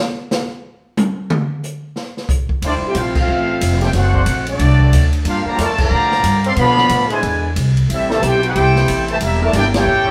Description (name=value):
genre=jazz, big band swing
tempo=182 BPM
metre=4/4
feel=swing 62% on 8ths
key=D minor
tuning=A4 = 440 Hz
part: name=swinging big-band drum kit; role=drums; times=0.3-9.8 s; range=crash cymbal, hi-hat, kick drum, ride cymbal, snare drum, toms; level=-24 LUFS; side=equal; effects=none
part: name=clear trombone section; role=second line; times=2.6-10.1 s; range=B2 to Bb4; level=-22 LUFS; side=equal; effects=none
part: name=clear trombone section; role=sustained chords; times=2.6-10.1 s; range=G3 to C5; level=-27 LUFS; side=equal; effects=none
part: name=upright bass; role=bass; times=2.6-10.1 s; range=E1 to B2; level=-19 LUFS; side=equal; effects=none
part: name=mellow trumpet section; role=melody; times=2.7-10.1 s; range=C4 to C6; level=-21 LUFS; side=equal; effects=none
room=moderate stone room reverb, RT60 1.1 s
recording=band playing live in one room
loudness=-16 LUFS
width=mono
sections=0.0-2.6 A section; 2.6-10.1 B section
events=drum solo 0.0-2.6; band accent 3.1, 5.7, 9.7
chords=0.0 N.C.; 2.6 Dm11; 3.9 D7b13; 5.3 Gm7; 6.6 Bm7b5; 7.2 E7b13; 7.9 Am7; 9.2 Em7b5